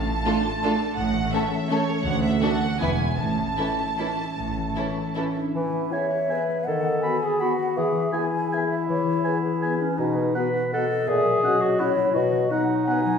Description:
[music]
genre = classical, orchestral ballroom waltz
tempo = 146-182 BPM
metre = 3/4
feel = rubato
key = A major, E major from 5.5 s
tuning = A4 = 441 Hz
[part]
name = warm symphonic violin section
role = melody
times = 0.0-5.2 s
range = C#5 to A5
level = -29 LUFS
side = right 2 dB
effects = none
[part]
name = concert harp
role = arpeggios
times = 0.0-13.2 s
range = A2 to E5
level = -29 LUFS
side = left 5 dB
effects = none
[part]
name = rich studio cello section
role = bass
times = 0.0-4.7 s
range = D2 to A2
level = -30 LUFS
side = right 4 dB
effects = none
[part]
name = warm symphonic double bass section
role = bass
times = 0.0-4.7 s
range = E1 to D2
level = -30 LUFS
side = right 3 dB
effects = none
[part]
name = warm symphonic violin section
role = second line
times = 0.3-5.2 s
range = E4 to B4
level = -31 LUFS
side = left 1 dB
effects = none
[part]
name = warm symphonic viola section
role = accompaniment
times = 0.3-5.3 s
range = E3 to D4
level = -30 LUFS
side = right 2 dB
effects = none
[part]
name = mellow clarinet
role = second line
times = 5.4-13.2 s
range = C#4 to C#5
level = -24 LUFS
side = left 1 dB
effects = none
[part]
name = mellow hollow concert flute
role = second line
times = 5.6-13.2 s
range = B4 to G#5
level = -28 LUFS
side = left 2 dB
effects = none
[part]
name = mellow bassoon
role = accompaniment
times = 5.6-12.4 s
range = A#2 to E3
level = -30 LUFS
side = right 1 dB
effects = none
[part]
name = warm oboe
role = second line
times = 5.9-13.0 s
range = F#5 to B5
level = -32 LUFS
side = right 2 dB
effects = none
[part]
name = dark French horn section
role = sustained chords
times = 5.9-13.0 s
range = B3 to G#4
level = -32 LUFS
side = left 3 dB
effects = none
[sound]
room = wet recital hall reverb, RT60 1.4 s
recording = recorded in a church or concert hall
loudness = -21 LUFS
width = side -6 dB against mid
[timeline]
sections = 0.0-5.5 A section; 5.5-13.2 B section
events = none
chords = 0.0 Dm/A; 1.0 A; 2.1 D; 2.8 E; 3.2 A; 5.5 E; 6.7 B7/D#; 7.8 E; 10.0 B; 11.1 F#7/A#; 12.2 B

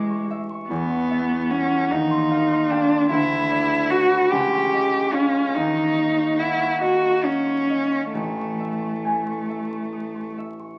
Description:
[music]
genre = classical, impressionist duo for cello and harp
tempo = 44-51 BPM (dotted quarters)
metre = 6/8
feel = rubato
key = unclear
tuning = A4 = 440 Hz
[part]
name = clear cello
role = melody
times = 0.0-10.3 s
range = G#3 to G4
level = -23 LUFS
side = equal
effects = none
[part]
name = concert harp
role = accompaniment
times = 0.0-10.8 s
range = A1 to D#6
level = -27 LUFS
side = equal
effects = none
[sound]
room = wet stone room reverb, RT60 1.4 s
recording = very old 78 rpm record, vinyl crackle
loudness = -22 LUFS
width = mono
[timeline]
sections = 0.0-10.8 A section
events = none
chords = 0.0 Amaj9; 0.7 Esus2; 1.9 D#69; 3.1 D69; 4.3 C#add9; 5.6 D#m7; 8.1 Amaj7

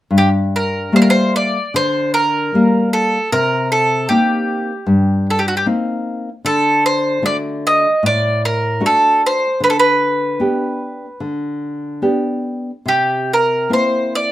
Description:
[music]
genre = fado-style ballad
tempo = 76 BPM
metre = 4/4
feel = rubato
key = G harmonic minor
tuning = A4 = 440 Hz
[part]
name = nylon-string guitar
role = accompaniment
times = 0.1-14.3 s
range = G2 to G4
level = -18 LUFS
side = left 1 dB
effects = none
[part]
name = bowl-back mandolin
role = melody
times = 0.2-14.3 s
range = F#4 to Eb5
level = -15 LUFS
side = right 1 dB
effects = none
[sound]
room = wet small room reverb, RT60 0.6 s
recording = rough home demo mix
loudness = -14 LUFS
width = side -14 dB against mid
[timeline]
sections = 0.1-14.3 A section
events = none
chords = 0.1 Gmadd9; 3.3 Cm7; 6.4 D; 9.6 G/D; 12.9 C7

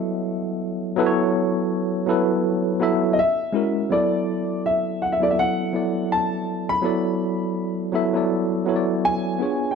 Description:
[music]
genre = R&B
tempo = 82 BPM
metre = 4/4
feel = swing 58% on 16ths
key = unclear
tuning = A4 = 440 Hz
[part]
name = dark grand piano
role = melody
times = 0.0-9.8 s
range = D5 to B5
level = -23 LUFS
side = left 1 dB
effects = slapback echo
[part]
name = tine electric piano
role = accompaniment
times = 0.0-9.8 s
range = F#3 to E5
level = -21 LUFS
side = equal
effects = overdrive, fast stereo tremolo
[sound]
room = moderate plate reverb, RT60 2.6 s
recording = none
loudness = -20 LUFS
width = side -6 dB against mid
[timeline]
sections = 0.0-3.9 A section; 3.9-9.8 B section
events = none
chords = 0.0 B5; 1.0 F#m7; 3.2 F#7; 3.9 Bm7; 6.8 E7sus4

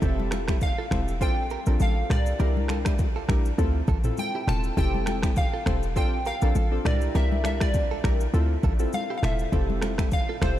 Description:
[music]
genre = afrobeats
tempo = 101 BPM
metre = 4/4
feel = swing 55% on 16ths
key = F major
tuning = A4 = 440 Hz
[part]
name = glassy wavetable pluck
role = melody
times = 0.0-10.6 s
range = C5 to A5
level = -32 LUFS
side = equal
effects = chorus, tape echo
[part]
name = warm analog keys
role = accompaniment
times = 0.0-10.6 s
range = C4 to Bb4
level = -32 LUFS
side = left 2 dB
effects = chorus
[part]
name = short 808-style bass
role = bass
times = 0.0-10.6 s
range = E1 to D2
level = -25 LUFS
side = equal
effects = none
[part]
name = afro-pop drum kit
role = drums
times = 0.0-10.6 s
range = finger snaps, kick drum, rim click, shaker, toms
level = -27 LUFS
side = equal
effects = vintage 12-bit sampler grit
[part]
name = congas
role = percussion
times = 0.0-10.6 s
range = none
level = -35 LUFS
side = left 6 dB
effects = none
[part]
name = direct-recorded clean electric guitar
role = riff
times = 0.3-10.5 s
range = E4 to C5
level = -38 LUFS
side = right 7 dB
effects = tape echo
[sound]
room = light reverb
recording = none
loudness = -22 LUFS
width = side -13 dB against mid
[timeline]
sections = 0.0-10.6 A section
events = none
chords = 0.0 Fmaj7; 1.2 Bbmaj7; 2.1 C9; 3.6 Dm7; 4.8 Fmaj7; 6.0 Bbmaj7; 6.9 C9; 8.3 Dm7; 9.5 Fmaj7

